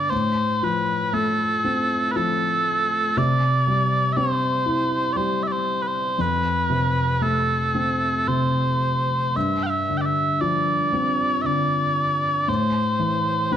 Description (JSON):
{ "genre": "celtic folk", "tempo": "58 BPM", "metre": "3/4", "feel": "uneven beats, rubato", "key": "unclear", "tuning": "A4 = 436 Hz", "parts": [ { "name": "mellow small bagpipes", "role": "melody", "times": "0.0-13.6 s", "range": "A4 to G5", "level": "-22 LUFS", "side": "right 1 dB", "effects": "none" }, { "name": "felt-muted upright piano", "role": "accompaniment", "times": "0.0-13.6 s", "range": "F2 to E4", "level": "-23 LUFS", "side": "left 1 dB", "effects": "none" } ], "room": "moderate recital hall reverb, RT60 1.5 s", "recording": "dark, warm production", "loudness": "-19 LUFS", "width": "side -10 dB against mid", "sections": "0.0-13.6 A section", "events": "none", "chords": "0.1 F/A; 3.2 Cadd9; 6.2 F; 9.4 G7sus4; 12.5 Am", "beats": "| 0.12 1.14 2.17 | 3.18 4.16 5.17 | 6.18 7.21 8.27 | 9.36 10.41 11.45 | 12.48 13.52" }